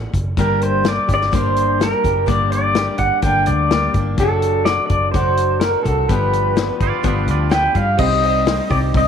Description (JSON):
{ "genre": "folk rock and heartland rock", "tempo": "126 BPM", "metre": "4/4", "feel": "straight", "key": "G harmonic minor", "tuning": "A4 = 441 Hz", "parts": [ { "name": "pedal steel guitar", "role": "melody", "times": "0.0-9.1 s", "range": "A4 to G5", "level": "-18 LUFS", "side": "right 1 dB", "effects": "none" }, { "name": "vintage muted picked electric bass", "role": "bass", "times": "0.0-9.1 s", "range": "F#1 to G2", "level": "-20 LUFS", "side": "right 1 dB", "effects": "none" }, { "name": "natural country drum kit", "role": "drums", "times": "0.1-9.1 s", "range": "crash cymbal, hi-hat, kick drum, snare drum", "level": "-22 LUFS", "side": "left 2 dB", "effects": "none" }, { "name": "picked steel-string acoustic guitar", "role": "accompaniment", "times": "0.4-9.1 s", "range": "G2 to A4", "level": "-23 LUFS", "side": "left 9 dB", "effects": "none" }, { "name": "twangy electric guitar", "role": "second line", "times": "6.8-7.9 s", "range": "F4 to D5", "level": "-26 LUFS", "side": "right 10 dB", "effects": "none" }, { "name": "bright upright piano", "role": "accompaniment", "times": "8.0-8.9 s", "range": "G4 to Eb5", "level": "-26 LUFS", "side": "right 12 dB", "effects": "none" }, { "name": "pedal harmonium", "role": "sustained chords", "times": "8.0-9.1 s", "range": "G3 to C5", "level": "-29 LUFS", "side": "right 12 dB", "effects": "none" } ], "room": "moderate spring reverb, RT60 2.2 s", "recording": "1960s-style stereo with parts hard left and right", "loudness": "-14 LUFS", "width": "side -7 dB against mid", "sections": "0.0-8.0 A section; 8.0-9.1 B section", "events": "none", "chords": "0.4 Gm; 4.2 D/F#; 6.1 G7; 8.0 Cm", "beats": "| 0.38 0.85 1.33 1.81 | 2.28 2.76 3.23 3.71 | 4.19 4.66 5.14 5.62 | 6.09 6.57 7.05 7.52 | 8.00 8.48 8.95" }